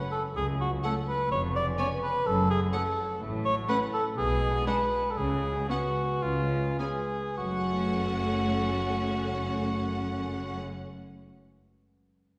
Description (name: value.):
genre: cinematic, playful, whimsical film cue.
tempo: 102-128 BPM.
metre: 4/4.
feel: straight.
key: F# minor.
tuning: A4 = 438 Hz.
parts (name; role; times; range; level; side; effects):
concert harp; arpeggios; 0.0-11.3 s; E#2 to F#5; -39 LUFS; equal; none.
mellow cor anglais; second line; 0.1-10.6 s; E#4 to D5; -32 LUFS; equal; none.
rich studio cello section; bass; 0.4-10.6 s; C#2 to C#3; -37 LUFS; equal; none.
rich studio double bass section; bass; 0.4-10.6 s; E#1 to C#2; -38 LUFS; equal; none.
rich studio violin section; melody; 0.8-10.6 s; F#5 to G#5; -45 LUFS; equal; none.
rich studio violin section; second line; 0.8-10.6 s; C#4 to D4; -42 LUFS; equal; none.
rich studio viola section; accompaniment; 0.8-10.6 s; G#3 to B3; -38 LUFS; equal; none.
room: wet scoring stage reverb, RT60 1.6 s.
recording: heard from further back in the room.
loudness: -29 LUFS.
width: mono.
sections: 0.0-7.4 A section; 7.4-11.9 B section.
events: slowing down 2.3-7.4.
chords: 0.0 F#m; 1.3 C#7/E#; 2.3 F#m; 3.2 F#m/A; 4.2 G#m7b5/B; 5.2 C#7sus4; 6.2 C#7; 7.4 F#m.